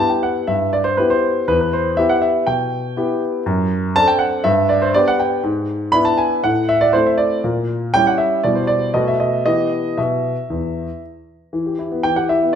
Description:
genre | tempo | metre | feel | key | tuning
classical-period piano sonatina | 120 BPM | 4/4 | straight | E minor | A4 = 441 Hz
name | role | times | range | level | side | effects
warm grand piano | solo | 0.0-12.6 s | E2 to B5 | -15 LUFS | equal | none
room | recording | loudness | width
moderate recital hall reverb, RT60 1.2 s | minimal, uncompressed stereo recording | -15 LUFS | side -8 dB against mid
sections
0.0-11.5 A section; 11.5-12.6 B section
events
none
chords
0.0 Em; 3.5 D7/F#; 4.5 G; 5.4 E7/G#; 6.4 Am; 7.4 A#dim7; 8.4 Em/B; 8.9 B7; 9.5 Em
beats
0.48 0.98 | 1.48 1.98 2.47 2.97 | 3.46 3.96 4.45 4.95 | 5.44 5.93 6.43 6.93 | 7.43 7.93 8.43 8.94 | 9.46 9.97 10.49 11.01 | 11.53 12.04 12.54

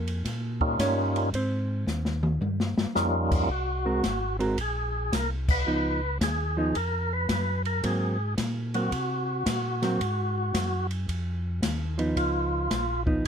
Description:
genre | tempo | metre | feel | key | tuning
soul jazz organ trio | 111 BPM | 4/4 | swing 67% on 8ths | Ab mixolydian | A4 = 440 Hz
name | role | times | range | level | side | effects
hollow-body jazz guitar | accompaniment | 0.0-13.2 s | F3 to Db5 | -28 LUFS | right 2 dB | none
mellow tonewheel organ | bass | 0.0-13.3 s | Ab1 to C3 | -30 LUFS | equal | slow rotary speaker
open jazz drum kit | drums | 0.1-13.3 s | crash cymbal, hi-hat, kick drum, ride cymbal, snare drum, toms | -30 LUFS | left 1 dB | none
percussive tonewheel organ | melody | 0.6-13.0 s | G3 to Cb5 | -28 LUFS | equal | slow rotary speaker
room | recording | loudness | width
little or no reverb | close, detailed microphones | -25 LUFS | side -8 dB against mid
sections
0.0-3.5 A section; 3.5-13.3 B section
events
hollow-body jazz guitar solo 0.0-3.5; drum fill 1.9-3.0; band accent 5.4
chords
0.0 Eb9; 1.3 Ab; 2.4 Eb9; 3.5 Ab9; 5.7 Db9; 7.8 Ab9; 12.2 Db9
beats
0.25 0.79 | 1.33 1.87 2.42 2.96 | 3.50 4.04 4.58 5.12 | 5.67 6.21 6.75 7.29 | 7.83 8.37 8.91 9.46 | 10.00 10.54 11.08 11.62 | 12.17 12.71 13.25

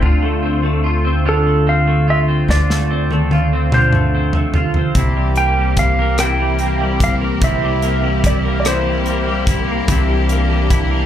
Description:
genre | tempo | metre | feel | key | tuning
six-eight pop ballad | 49 BPM (dotted quarters) | 6/8 | straight | unclear | A4 = 437 Hz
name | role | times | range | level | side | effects
twelve-string electric guitar | accompaniment | 0.0-11.1 s | C3 to F4 | -18 LUFS | equal | double-tracked left and right
upright bass | bass | 0.0-11.1 s | C2 to D2 | -18 LUFS | equal | none
clean lap steel guitar | melody | 1.3-9.5 s | A4 to G5 | -20 LUFS | right 1 dB | slapback echo, digital delay
modern studio drum kit | drums | 2.5-10.9 s | hi-hat, kick drum, rim click, snare drum, toms | -18 LUFS | equal | none
bright studio string section | sustained chords | 5.0-11.1 s | E3 to G4 | -24 LUFS | left 1 dB | none
room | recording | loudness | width
light reverb | live gig heard through the venue's PA, club reverb | -13 LUFS | side -10 dB against mid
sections
0.0-11.1 A section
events
drum fill 2.5-5.0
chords
0.0 Dm7; 5.0 C7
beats
| 0.03 1.26 | 2.49 3.72 | 4.95 6.19 | 7.42 8.65 | 9.88

